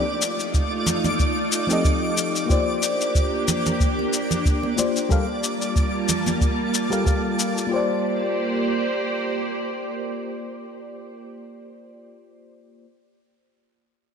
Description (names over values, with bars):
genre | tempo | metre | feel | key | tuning
sunset chillout | 92 BPM | 4/4 | swing 55% on 16ths | Bb major | A4 = 440 Hz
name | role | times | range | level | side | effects
mellow FM electric piano | accompaniment | 0.0-12.8 s | F3 to F5 | -27 LUFS | moving between left 5 dB and right 3 dB | chorus, auto-pan, low-pass filter, ping-pong delay
soft string machine | sustained chords | 0.0-11.1 s | G3 to A5 | -26 LUFS | right 1 dB | ensemble chorus
twinkling granular texture | texture | 0.0-7.7 s | D5 to D6 | -30 LUFS | equal | built-in reverb
shaker | drums | 0.2-7.7 s | none | -28 LUFS | left 6 dB | none
electronic kick drum | drums | 0.5-7.2 s | none | -21 LUFS | right 1 dB | none
congas | percussion | 0.9-7.0 s | none | -29 LUFS | right 2 dB | none
room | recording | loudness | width
wet lush hall reverb, RT60 2.3 s | bright 1980s-style digital production | -20 LUFS | side -6 dB against mid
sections
0.0-7.7 A section; 7.7-10.3 B section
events
none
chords
0.0 F13; 2.5 Bb69; 5.1 Gm9; 7.7 Bb69